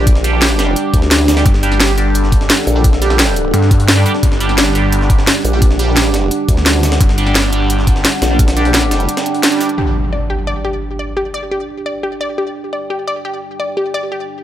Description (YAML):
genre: dark technical drum and bass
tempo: 173 BPM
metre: 4/4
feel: straight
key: G harmonic minor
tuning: A4 = 440 Hz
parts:
  - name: deep dark ambient pad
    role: sustained chords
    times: 0.0-14.4 s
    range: G3 to F#6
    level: -23 LUFS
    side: left 2 dB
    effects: chorus, built-in reverb, sidechain pumping
  - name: band-passed chord stab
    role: stabs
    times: 0.0-9.7 s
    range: G3 to G4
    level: -21 LUFS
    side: right 3 dB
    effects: phaser, digital delay
  - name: formant-sweep wobble bass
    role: bass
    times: 0.0-9.1 s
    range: Bb1 to D2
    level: -15 LUFS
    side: equal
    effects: chorus
  - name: warbly tape-like pad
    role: texture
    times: 0.0-14.4 s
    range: D4 to G5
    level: -22 LUFS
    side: right 4 dB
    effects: chorus, built-in reverb, sidechain pumping
  - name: drum and bass drum kit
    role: drums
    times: 0.1-9.8 s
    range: crash cymbal, hi-hat, snare drum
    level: -14 LUFS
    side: equal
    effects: low-pass filter on hats, low-pass filter on snare, low-pass filter on toms, low-pass filter on cymbals, low-pass filter on room
  - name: electronic kick drum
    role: drums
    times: 0.1-8.5 s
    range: none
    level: -12 LUFS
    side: equal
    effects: none
  - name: jungle sampler-style drum kit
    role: drums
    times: 0.1-9.7 s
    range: hi-hat, snare drum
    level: -24 LUFS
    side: equal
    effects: none
  - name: snarling distorted saw bass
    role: bass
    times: 1.5-8.0 s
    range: G1 to G2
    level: -15 LUFS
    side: equal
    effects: distortion, sidechain pumping
  - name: wide unison pluck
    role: arpeggios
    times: 9.8-14.2 s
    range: G4 to D5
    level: -20 LUFS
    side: left 1 dB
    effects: sidechain pumping, digital delay
  - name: impact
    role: sound effects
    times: 9.8-11.2 s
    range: none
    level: -20 LUFS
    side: equal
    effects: none
room: light reverb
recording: none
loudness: -11 LUFS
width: side -12 dB against mid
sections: 0.0-9.8 A section; 9.8-14.4 B section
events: drop 0.0-9.8; break 9.1-9.8; band accent 9.4; impact 9.8-11.2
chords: 0.0 G5